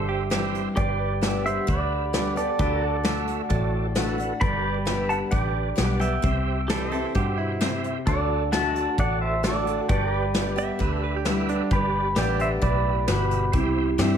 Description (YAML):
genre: honky-tonk and classic country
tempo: 132 BPM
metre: 4/4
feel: straight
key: G major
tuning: A4 = 439 Hz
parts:
  - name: pedal steel guitar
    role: melody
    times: 0.0-14.2 s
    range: E4 to B5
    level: -27 LUFS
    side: right 2 dB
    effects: plate reverb
  - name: direct-recorded clean electric guitar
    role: second line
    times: 0.0-0.6, 6.7-11.7 s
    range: D4 to E5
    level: -31 LUFS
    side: right 7 dB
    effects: tape echo
  - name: overdriven tonewheel organ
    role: accompaniment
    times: 0.0-14.2 s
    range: F#4 to E5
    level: -32 LUFS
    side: right 6 dB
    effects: slow rotary speaker, chorus vibrato
  - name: picked steel-string acoustic guitar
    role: accompaniment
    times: 0.0-14.2 s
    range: G2 to G4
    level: -29 LUFS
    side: left 4 dB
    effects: none
  - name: pedal steel guitar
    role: sustained chords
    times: 0.0-14.2 s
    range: C4 to E5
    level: -35 LUFS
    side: left 1 dB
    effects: none
  - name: vintage muted fingered electric bass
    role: bass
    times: 0.0-14.2 s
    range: G1 to G2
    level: -28 LUFS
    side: equal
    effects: none
  - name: soft brush drum kit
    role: drums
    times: 0.3-14.1 s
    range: hi-hat, kick drum, snare drum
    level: -27 LUFS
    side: left 1 dB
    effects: none
room: moderate large studio reverb, RT60 0.8 s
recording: none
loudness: -22 LUFS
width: side -8 dB against mid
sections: 0.0-11.7 A section; 11.7-14.2 A section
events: none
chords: 0.0 C; 0.8 G; 2.6 D; 4.4 G; 6.2 C; 8.1 D; 9.9 G; 13.5 C